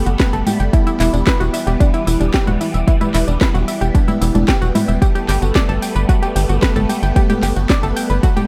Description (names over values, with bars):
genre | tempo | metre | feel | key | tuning
italo disco | 112 BPM | 4/4 | straight | E minor | A4 = 440 Hz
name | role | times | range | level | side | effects
phased string machine | sustained chords | 0.0-8.5 s | E3 to B3 | -25 LUFS | equal | ensemble chorus, phaser
tight sequencer bass | bass | 0.0-8.2 s | E1 to G1 | -20 LUFS | equal | none
analog pluck | arpeggios | 0.1-8.5 s | D4 to G5 | -24 LUFS | equal | chorus, cassette tape, delay
house drum kit | drums | 0.1-8.5 s | congas, handclaps, hi-hat, snare drum, tambourine | -23 LUFS | equal | small room ambience
electronic kick drum | drums | 0.2-8.3 s | none | -18 LUFS | equal | small room ambience
room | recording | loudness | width
little or no reverb | none | -16 LUFS | mono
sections
0.0-8.5 A section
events
none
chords
0.0 Gadd9; 0.7 Em; 5.0 Gadd9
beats
0.20 | 0.73 1.27 1.80 2.34 | 2.88 3.41 3.95 4.48 | 5.02 5.55 6.09 6.63 | 7.16 7.70 8.23